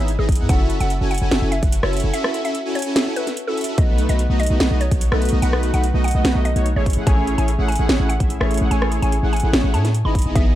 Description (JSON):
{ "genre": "future bass", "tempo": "146 BPM", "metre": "4/4", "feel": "half-time", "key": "unclear", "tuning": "A4 = 440 Hz", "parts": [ { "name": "mallet-like synth pluck", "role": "melody", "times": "0.0-10.6 s", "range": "G#4 to B5", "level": "-28 LUFS", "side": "left 1 dB", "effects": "chorus, cassette tape, sidechain pumping, ping-pong delay" }, { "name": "soft supersaw", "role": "riff", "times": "0.0-10.6 s", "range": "A3 to G#5", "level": "-23 LUFS", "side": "equal", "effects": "cassette tape, sidechain pumping" }, { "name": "warm 808-style bass", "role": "bass", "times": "0.0-10.6 s", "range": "F#1 to A2", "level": "-19 LUFS", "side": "equal", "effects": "sidechain pumping" }, { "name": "trap drum kit", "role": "drums", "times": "0.1-10.4 s", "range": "hi-hat, rim click, snare drum", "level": "-23 LUFS", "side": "equal", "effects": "overdrive" }, { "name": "electronic kick drum", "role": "drums", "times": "0.3-10.4 s", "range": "none", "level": "-17 LUFS", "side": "equal", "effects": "none" } ], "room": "little or no reverb", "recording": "none", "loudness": "-16 LUFS", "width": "side -13 dB against mid", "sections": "0.0-10.6 A section", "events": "break 2.1-3.8", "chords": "0.5 F#m7; 3.8 B7; 6.9 Amaj7" }